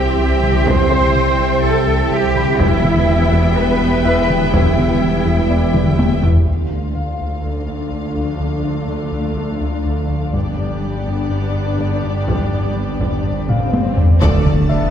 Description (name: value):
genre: cinematic, hybrid orchestral and electronic film score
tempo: 124 BPM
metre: 4/4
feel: straight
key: D dorian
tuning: A4 = 444 Hz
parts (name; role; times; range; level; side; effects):
- clear symphonic violin section; melody; 0.0-6.2, 14.2-14.9 s; G5 to A5; -28 LUFS; left 3 dB; low-pass filter
- warm symphonic violin section; second line; 0.0-14.8 s; F4 to F5; -28 LUFS; left 4 dB; none
- warm symphonic viola section; accompaniment; 0.0-14.9 s; A3 to D4; -26 LUFS; left 1 dB; low-pass filter
- ethereal airy pad; sustained chords; 0.1-14.9 s; F3 to D5; -29 LUFS; equal; none
- mellow French horn section; sustained chords; 0.0-6.2, 14.2-14.9 s; B3 to G4; -27 LUFS; right 2 dB; none
- warm trombone section; sustained chords; 0.0-6.2, 14.2-14.4 s; E3 to A3; -29 LUFS; equal; none
- harp-like synth pluck; arpeggios; 0.0-14.8 s; C3 to G4; -27 LUFS; right 1 dB; none
- rubbery square bass; riff; 0.0-14.8 s; C2 to G3; -23 LUFS; left 1 dB; low-pass filter
- dark tuba; bass; 0.0-6.2, 14.2-14.8 s; E1 to D2; -23 LUFS; right 2 dB; none
- detuned saw bass; bass; 0.0-6.5, 14.2-14.9 s; D1 to C2; -25 LUFS; equal; none
- rich symphonic cello section; bass; 0.0-14.8 s; D2 to C5; -22 LUFS; right 1 dB; none
- rich symphonic double bass section; bass; 0.0-14.8 s; G1 to E2; -23 LUFS; right 1 dB; none
- felt-muted upright piano; texture; 0.0-14.9 s; A3 to C6; -28 LUFS; left 2 dB; digital delay
- solo taiko drums; drums; 0.4-7.4, 10.3-14.7 s; none; -18 LUFS; equal; none
- swell and impact; sound effects; 13.3-14.9 s; none; -23 LUFS; equal; none
room: wet scoring stage reverb, RT60 1.5 s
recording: heard from further back in the room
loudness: -14 LUFS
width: side -8 dB against mid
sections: 0.0-6.5 A section; 6.5-14.2 B section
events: drum fill 5.7-6.5, 13.5-14.2; filter sweep 6.5-14.2; swell 13.3-14.2; impact 14.2-14.9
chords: 0.0 C; 2.6 Em; 6.5 Dm; 10.3 G; 14.2 Dm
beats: 0.18 | 0.67 1.15 1.63 2.12 | 2.60 3.09 3.57 4.05 | 4.54 5.02 5.50 5.99 | 6.47 6.96 7.44 7.92 | 8.41 8.89 9.38 9.86 | 10.34 10.83 11.31 11.79 | 12.28 12.76 13.25 13.73 | 14.21 14.70